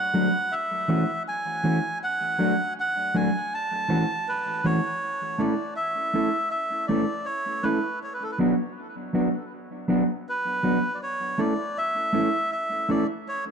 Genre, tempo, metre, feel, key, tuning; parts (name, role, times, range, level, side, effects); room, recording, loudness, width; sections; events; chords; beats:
reggae; 80 BPM; 4/4; swing 58% on 16ths; A major; A4 = 440 Hz
melodica; melody; 0.0-13.4 s; A4 to A5; -27 LUFS; right 1 dB; dub echo
mellow electric guitar; accompaniment; 0.1-13.0 s; E3 to A4; -26 LUFS; equal; spring reverb, dub echo
moderate studio reverb, RT60 0.5 s; dark, warm production; -23 LUFS; side -6 dB against mid
0.0-5.0 A section; 5.0-13.5 B section
0.0 F#m; 0.5 A6; 2.0 F#madd9; 3.5 A6; 5.0 A; 8.0 Bm; 11.0 A
0.52 1.27 | 2.02 2.77 3.52 4.26 | 5.01 5.76 6.51 7.26 | 8.01 8.76 9.51 10.26 | 11.01 11.76 12.51 13.26